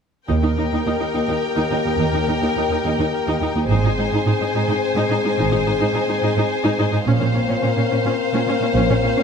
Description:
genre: cinematic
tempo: 107 BPM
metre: 3/4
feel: straight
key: unclear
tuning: A4 = 441 Hz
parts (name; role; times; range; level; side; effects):
- warm symphonic violin section; melody; 0.3-9.2 s; F5 to Ab5; -28 LUFS; left 2 dB; none
- rich symphonic violin section; second line; 0.3-9.2 s; Bb4 to C5; -25 LUFS; left 3 dB; none
- warm symphonic viola section; accompaniment; 0.3-9.2 s; Db4 to Eb4; -25 LUFS; equal; none
- dark French horn section; sustained chords; 0.3-9.2 s; Bb3 to Bb4; -24 LUFS; left 6 dB; none
- clear symphonic cello section; bass; 0.3-9.2 s; Eb2 to Bb2; -22 LUFS; right 3 dB; none
- rich symphonic double bass section; bass; 0.3-8.9 s; Ab1 to Eb2; -22 LUFS; right 3 dB; none
room: moderate recital hall reverb, RT60 1.5 s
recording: none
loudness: -17 LUFS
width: side -6 dB against mid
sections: 0.3-9.2 A section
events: build-up 0.3-9.2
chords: 0.3 Eb; 3.7 Ab; 7.1 Bbmadd9

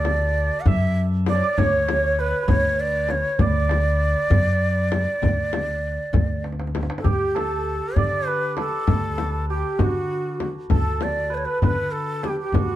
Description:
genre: Persian modal ensemble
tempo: 66 BPM (dotted quarters)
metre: 6/8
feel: straight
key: D dastgah mahur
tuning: A4 = 440 Hz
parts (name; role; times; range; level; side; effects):
- breathy bright ney; melody; 0.0-12.8 s; F#4 to F#5; -24 LUFS; equal; none
- santur; second line; 0.0-12.8 s; F#4 to E5; -29 LUFS; right 6 dB; none
- upright bass; bass; 0.0-12.8 s; D2 to D3; -24 LUFS; equal; none
- frame drum; percussion; 0.0-12.7 s; none; -26 LUFS; left 5 dB; none
- tombak; percussion; 0.1-12.7 s; none; -25 LUFS; right 2 dB; none
room: moderate small room reverb, RT60 0.6 s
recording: dark, warm production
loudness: -19 LUFS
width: side -13 dB against mid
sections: 0.0-7.1 A section; 7.1-12.8 B section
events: drum fill 6.4-7.1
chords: none

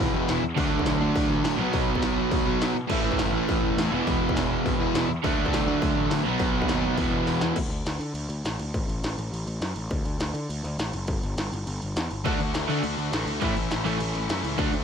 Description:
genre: punk rock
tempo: 206 BPM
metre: 4/4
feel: straight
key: unclear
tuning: A4 = 442 Hz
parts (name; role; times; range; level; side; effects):
- crunchy overdriven guitar; riff; 0.0-7.6, 12.3-14.7 s; E2 to D4; -27 LUFS; right 13 dB; none
- sludgy distorted guitar; riff; 0.0-7.6, 12.3-14.7 s; E2 to D4; -29 LUFS; left 11 dB; overdrive
- sludgy distorted guitar; riff; 0.0-7.6, 12.2-14.8 s; A2 to F#4; -29 LUFS; left 1 dB; overdrive
- fuzz picked electric bass; bass; 0.0-14.8 s; E1 to D3; -31 LUFS; left 1 dB; overdrive
- industrial drum kit; drums; 0.0-14.8 s; crash cymbal, hi-hat, kick drum, snare drum; -29 LUFS; left 1 dB; distortion
room: light reverb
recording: none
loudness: -23 LUFS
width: side -7 dB against mid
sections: 0.0-7.6 A section; 7.6-14.8 B section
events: drum fill 7.3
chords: 0.0 E; 0.6 D; 1.6 B; 2.9 A; 3.9 E; 5.2 D; 6.3 B; 7.0 E; 7.6 D5; 8.7 N.C.; 9.9 D; 11.1 N.C.; 12.3 D; 13.4 A

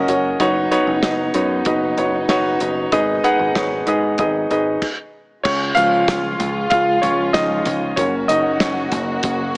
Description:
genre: piano-driven pop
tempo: 95 BPM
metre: 4/4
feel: straight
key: Db mixolydian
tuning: A4 = 441 Hz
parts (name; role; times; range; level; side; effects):
- warm grand piano; accompaniment; 0.0-9.6 s; Ab2 to Gb5; -17 LUFS; equal; none
- dark studio string section; sustained chords; 0.0-9.6 s; Cb3 to Gb4; -27 LUFS; equal; none
- picked electric bass; bass; 0.0-9.5 s; Gb1 to Ab2; -26 LUFS; equal; none
- damped 70s drum kit; drums; 0.1-9.4 s; crash cymbal, hi-hat, kick drum, snare drum, toms; -24 LUFS; equal; none
room: moderate recital hall reverb, RT60 1.4 s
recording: small speaker sound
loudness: -16 LUFS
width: side -30 dB against mid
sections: 0.0-5.5 A section; 5.5-9.6 B section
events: stop 4.8-5.5; grand piano solo 5.5-9.6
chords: 0.4 Cbadd9/Gb; 2.9 Abm; 5.5 Db; 8.0 Gb

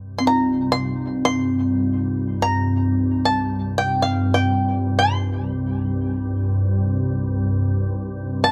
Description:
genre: world meditative, free-time meditation music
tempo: free time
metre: none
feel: none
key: C minor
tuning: A4 = 436 Hz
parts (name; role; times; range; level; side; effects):
- soft additive organ-like pad; drone; 0.0-8.5 s; C2 to G2; -24 LUFS; equal; ensemble chorus, built-in reverb
- bluegrass banjo; melody; 0.2-8.5 s; F5 to C6; -24 LUFS; equal; plate reverb
- quartz singing bowl; texture; 0.2-7.6 s; C4 to F4; -27 LUFS; equal; none
room: wet booth ambience, RT60 0.2 s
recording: none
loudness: -21 LUFS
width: mono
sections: 0.0-8.5 A section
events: none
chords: none

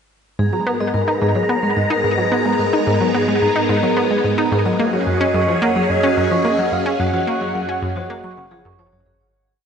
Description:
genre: ambient, sequencer-driven space music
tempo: 109 BPM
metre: 4/4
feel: straight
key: G# minor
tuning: A4 = 440 Hz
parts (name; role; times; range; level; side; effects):
- phased string machine; sustained chords; 0.4-9.2 s; F#2 to A#5; -20 LUFS; left 1 dB; ensemble chorus, phaser
- vibraphone with medium mallets; arpeggios; 0.4-9.2 s; F#4 to C#6; -22 LUFS; right 2 dB; auto-pan, tape echo
- analog pluck; riff; 0.4-9.2 s; F#2 to D#4; -20 LUFS; equal; chorus, tape echo
- mellow horn-like synth lead; melody; 4.8-8.6 s; C#5 to F#5; -23 LUFS; equal; analog chorus, tape echo
room: wet plate reverb, RT60 3.5 s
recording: echo-heavy mix, cassette tape, nothing above 10.8 kHz, faint mains hum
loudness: -15 LUFS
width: side -7 dB against mid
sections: 0.4-9.2 A section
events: fade-out 6.3-9.2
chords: 0.4 G#madd9; 4.8 F#sus2

